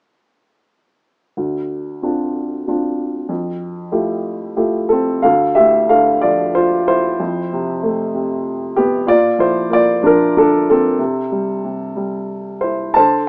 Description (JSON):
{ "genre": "classical, lyrical solo piano", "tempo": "93 BPM", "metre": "3/4", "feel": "uneven beats, rubato", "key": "unclear", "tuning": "A4 = 442 Hz", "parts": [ { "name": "dark upright piano", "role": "solo", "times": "1.4-13.3 s", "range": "D2 to A5", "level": "-17 LUFS", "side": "equal", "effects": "none" } ], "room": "light reverb", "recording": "small speaker sound", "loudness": "-17 LUFS", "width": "mono", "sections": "1.4-5.2 A section; 5.2-13.3 B section", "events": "none", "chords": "1.4 Dm7; 3.3 Fmaj9; 5.2 Dm; 7.2 Fmaj7; 9.1 Bb; 11.0 C", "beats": "| 1.36 2.03 2.67 | 3.30 3.93 4.58 | 5.24 5.90 6.55 | 7.19 7.82 8.44 | 9.07 9.70 10.34 | 10.99 11.63 12.29 | 12.96" }